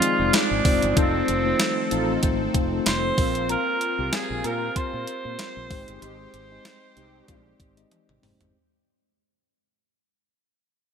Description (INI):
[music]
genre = 1980s-style pop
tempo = 95 BPM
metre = 4/4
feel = swing 55% on 16ths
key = unclear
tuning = A4 = 440 Hz
[part]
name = bright alto saxophone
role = melody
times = 0.0-7.9 s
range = C4 to C5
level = -27 LUFS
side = right 2 dB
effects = digital delay
[part]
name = soft synth bell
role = second line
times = 0.0-7.9 s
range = C5 to C6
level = -35 LUFS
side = right 1 dB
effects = none
[part]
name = mellow tine electric piano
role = accompaniment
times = 0.0-8.6 s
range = Ab3 to Eb5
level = -27 LUFS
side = left 4 dB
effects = medium stereo tremolo
[part]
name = phased analog pad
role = sustained chords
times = 0.0-8.5 s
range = Eb3 to A4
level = -32 LUFS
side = right 1 dB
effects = phaser, chorus
[part]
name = clean 12-bit digital drum machine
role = drums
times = 0.0-8.5 s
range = hi-hat, kick drum, snare drum, tambourine, toms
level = -24 LUFS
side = equal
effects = none
[part]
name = mellow fretless electric bass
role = bass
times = 0.2-8.5 s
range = F1 to Bb2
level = -30 LUFS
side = equal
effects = lush chorus
[part]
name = mellow synth brass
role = stabs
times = 1.0-7.4 s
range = C4 to Bb4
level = -35 LUFS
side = right 1 dB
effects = chorus, digital delay
[sound]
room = moderate plate reverb, RT60 3.2 s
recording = bright 1980s-style digital production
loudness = -21 LUFS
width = side -7 dB against mid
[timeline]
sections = 0.0-8.5 A section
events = fade-out 0.0-8.5; drum fill 7.9-8.5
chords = 0.0 Fm7; 1.0 F7; 3.2 Bbsus2; 5.7 Abmaj7